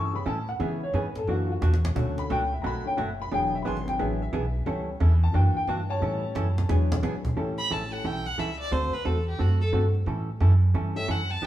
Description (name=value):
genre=country, western swing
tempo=178 BPM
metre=4/4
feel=swing 64% on 8ths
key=A mixolydian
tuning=A4 = 439 Hz
part: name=hollow-body jazz guitar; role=accompaniment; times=0.0-11.5 s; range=B2 to A4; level=-32 LUFS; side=right 3 dB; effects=none
part: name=warm upright piano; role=accompaniment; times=0.0-11.1 s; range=C#3 to C#6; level=-30 LUFS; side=left 3 dB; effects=none
part: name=upright bass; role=bass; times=0.0-11.5 s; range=E1 to C#3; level=-25 LUFS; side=equal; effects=none
part: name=cajon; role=drums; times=0.3-11.5 s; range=none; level=-34 LUFS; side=right 1 dB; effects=none
part: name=clear fiddle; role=melody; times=7.6-11.5 s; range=F#4 to B5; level=-30 LUFS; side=equal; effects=none
room=moderate stone room reverb, RT60 1.4 s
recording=band playing live in one room, small room ambience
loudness=-23 LUFS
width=side -13 dB against mid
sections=0.0-7.4 A section; 7.4-11.5 A section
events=upright piano solo 0.0-7.4; drum fill 1.6-2.0, 6.4-7.0; fiddle solo 7.4-11.5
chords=0.0 A7; 0.6 C#m7; 1.3 F#aug7; 2.0 Bm7; 3.3 E7; 4.7 A7; 5.3 F#7b13; 6.0 A7; 6.7 E7; 7.4 A7; 8.7 D7; 10.1 A7